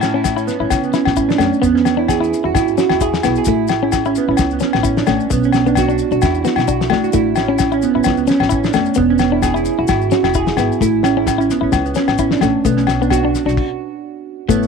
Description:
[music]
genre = highlife guitar band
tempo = 131 BPM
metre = 4/4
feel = swing 55% on 16ths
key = A major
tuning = A4 = 440 Hz
[part]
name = harp-like synth pluck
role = arpeggios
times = 0.0-14.7 s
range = B3 to G#4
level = -17 LUFS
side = right 9 dB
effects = chorus, slapback echo
[part]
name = upright bass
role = bass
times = 0.0-14.7 s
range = E1 to C#3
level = -23 LUFS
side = left 1 dB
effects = none
[part]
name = cloth-damped thuddy drum kit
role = drums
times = 0.0-14.6 s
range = crash cymbal, kick drum, snare drum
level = -21 LUFS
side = left 5 dB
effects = none
[part]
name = agogo bells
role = percussion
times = 0.0-13.2 s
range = none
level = -22 LUFS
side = left 14 dB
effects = none
[part]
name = maracas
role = percussion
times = 0.0-14.7 s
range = none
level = -32 LUFS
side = left 15 dB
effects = none
[part]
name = clean electric guitar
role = accompaniment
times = 0.1-14.7 s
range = A3 to E4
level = -20 LUFS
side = left 12 dB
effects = none
[part]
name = mellow tonewheel organ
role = sustained chords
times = 14.5-14.7 s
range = E4 to C#5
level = -28 LUFS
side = left 2 dB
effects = slow rotary speaker
[part]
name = congas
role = percussion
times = 14.5-14.6 s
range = none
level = barely audible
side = none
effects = none
[sound]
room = light reverb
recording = 1960s-style stereo with parts hard left and right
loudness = -13 LUFS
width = side -5 dB against mid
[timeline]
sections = 0.0-14.5 A section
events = stop 13.6-14.5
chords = 0.0 A; 1.6 E; 3.5 A; 5.3 Bm; 7.1 A; 9.0 E; 10.8 A; 12.7 Bm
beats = 0.26 0.72 1.18 | 1.63 2.09 2.55 3.01 | 3.47 3.93 4.39 4.85 | 5.31 5.76 6.22 6.68 | 7.14 7.60 8.06 8.52 | 8.98 9.44 9.90 10.36 | 10.81 11.28 11.73 12.19 | 12.65 13.11 13.57 14.03 | 14.49

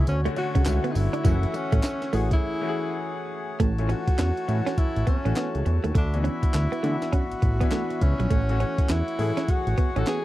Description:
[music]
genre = R&B, new jack swing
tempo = 102 BPM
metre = 4/4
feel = swing 63% on 16ths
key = A major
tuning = A4 = 440 Hz
[part]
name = breathy tenor saxophone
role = melody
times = 0.0-10.2 s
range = C#4 to A4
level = -31 LUFS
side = equal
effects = none
[part]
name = clear concert grand piano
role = accompaniment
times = 0.0-10.2 s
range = D3 to G#4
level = -32 LUFS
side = left 4 dB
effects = none
[part]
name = hand-pumped harmonium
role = sustained chords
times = 0.0-10.2 s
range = F#4 to B5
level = -36 LUFS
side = left 1 dB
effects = stereo widening
[part]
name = fat analog bass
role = bass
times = 0.0-10.0 s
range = F#1 to D3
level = -24 LUFS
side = equal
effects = none
[part]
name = breakbeat sampler-style drum kit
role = drums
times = 0.1-10.2 s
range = handclaps, hi-hat, kick drum, snare drum, tambourine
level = -23 LUFS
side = equal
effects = none
[part]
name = direct-recorded clean electric guitar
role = riff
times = 0.3-10.2 s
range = F#3 to D4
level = -30 LUFS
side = right 5 dB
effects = wide subtle chorus
[sound]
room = little or no reverb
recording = dry, close 1970s-style studio recording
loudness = -22 LUFS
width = side -15 dB against mid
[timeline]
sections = 0.0-3.6 A section; 3.6-10.2 B section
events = break 2.4-3.6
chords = 0.1 Dmaj7; 1.2 F#m7; 2.1 Amaj7; 3.6 A6; 6.0 D69; 8.3 A6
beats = 0.07 0.66 | 1.25 1.84 2.43 3.01 | 3.60 4.19 4.78 5.37 | 5.96 6.54 7.13 7.72 | 8.31 8.90 9.48 10.07

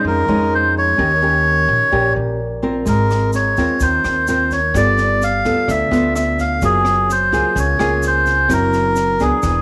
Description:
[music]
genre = bossa nova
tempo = 128 BPM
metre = 4/4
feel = straight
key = unclear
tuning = A4 = 440 Hz
[part]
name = melodica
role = melody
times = 0.0-9.6 s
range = Ab4 to F5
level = -18 LUFS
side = equal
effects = none
[part]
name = nylon-string guitar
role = accompaniment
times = 0.0-9.6 s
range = Bb2 to Bb4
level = -22 LUFS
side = equal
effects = none
[part]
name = upright bass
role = bass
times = 0.0-9.6 s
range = E1 to F2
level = -24 LUFS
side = equal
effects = none
[part]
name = open jazz drum kit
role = drums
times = 2.9-9.5 s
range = kick drum, rim click, snare drum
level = -31 LUFS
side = equal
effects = none
[part]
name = egg shaker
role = percussion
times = 2.9-9.6 s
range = none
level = -39 LUFS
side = equal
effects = none
[sound]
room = light reverb, small room ambience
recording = none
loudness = -16 LUFS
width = mono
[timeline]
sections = 0.0-9.6 A section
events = none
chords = 0.0 Bbm7; 1.0 Eb7; 2.9 Ab69; 4.7 G9; 6.6 Gbmaj9; 8.5 Gb7#11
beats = 0.04 0.51 | 0.98 1.45 1.92 2.39 | 2.86 3.33 3.80 4.27 | 4.74 5.21 5.68 6.15 | 6.62 7.09 7.56 8.03 | 8.50 8.97 9.44

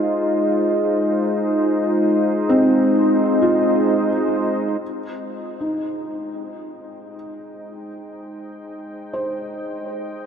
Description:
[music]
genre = ambient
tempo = free time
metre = none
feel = none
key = Ab major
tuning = A4 = 442 Hz
[part]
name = warm analog pad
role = sustained chords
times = 0.0-10.3 s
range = Ab3 to G5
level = -20 LUFS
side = equal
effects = lush chorus
[part]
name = felt-muted upright piano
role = arpeggios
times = 0.0-10.3 s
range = C4 to C5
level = -22 LUFS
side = equal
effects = diffuse ambient delay
[sound]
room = wet huge ambient reverb, RT60 8.4 s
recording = none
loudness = -17 LUFS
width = side -7 dB against mid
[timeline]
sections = 0.0-4.8 A section; 4.8-10.3 B section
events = fade-in on analog synth pad 4.8-10.3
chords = 0.0 Fm7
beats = free time

